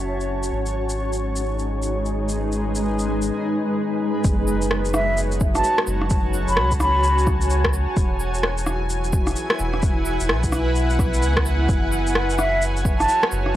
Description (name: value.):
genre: future garage.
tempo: 129 BPM.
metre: 4/4.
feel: swing 62% on 16ths.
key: F# dorian.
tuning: A4 = 440 Hz.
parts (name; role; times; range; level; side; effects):
granular cloud pad; sustained chords; 0.0-13.6 s; G#3 to A5; -24 LUFS; equal; built-in reverb, sidechain pumping.
soft dub sub bass; bass; 0.0-13.6 s; E1 to C#2; -24 LUFS; equal; tube saturation, sidechain pumping.
wind-like tuned noise texture; texture; 0.0-3.3 s; C#4 to C#5; -35 LUFS; left 2 dB; built-in reverb.
electronic shaker, cabasa and rim click; drums; 0.2-13.5 s; none; -25 LUFS; equal; overdrive.
electronic kick drum; drums; 4.2-13.0 s; none; -22 LUFS; equal; overdrive.
bright wooden flute; melody; 4.9-7.3, 12.4-13.2 s; E5 to B5; -22 LUFS; right 1 dB; analog delay.
room: little or no reverb.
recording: dry, gritty hardware recording, vinyl crackle.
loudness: -19 LUFS.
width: side -13 dB against mid.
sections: 0.0-4.2 A section; 4.2-13.6 B section.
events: filter sweep on ambient pad 0.0-4.2.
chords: 0.0 F#madd9; 0.5 G#m7; 4.2 F#madd9; 8.0 E6; 11.7 F#m9.